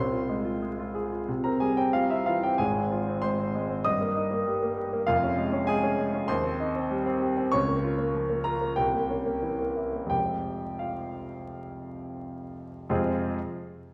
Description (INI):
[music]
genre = classical, virtuoso piano study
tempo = 84-99 BPM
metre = 4/4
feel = rubato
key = F minor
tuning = A4 = 439 Hz
[part]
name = warm grand piano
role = solo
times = 0.0-13.4 s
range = F1 to Eb6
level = -28 LUFS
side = equal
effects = none
[sound]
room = wet recital hall reverb, RT60 1.4 s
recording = heard from further back in the room, vinyl crackle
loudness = -28 LUFS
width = mono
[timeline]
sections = 0.0-12.9 A section; 12.9-13.9 B section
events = none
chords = 0.0 Fm/C; 1.3 C; 2.6 Fm/Ab; 3.8 Eb/G; 5.1 Db/F; 6.3 Cm/Eb; 7.5 Bbm/Db; 8.8 C7b9; 10.1 Fm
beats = 0.62 1.28 1.94 | 2.59 3.23 3.85 4.46 | 5.08 5.68 6.30 6.91 | 7.53 8.14 8.77 9.43 | 10.11 10.81 11.50 12.20 | 12.90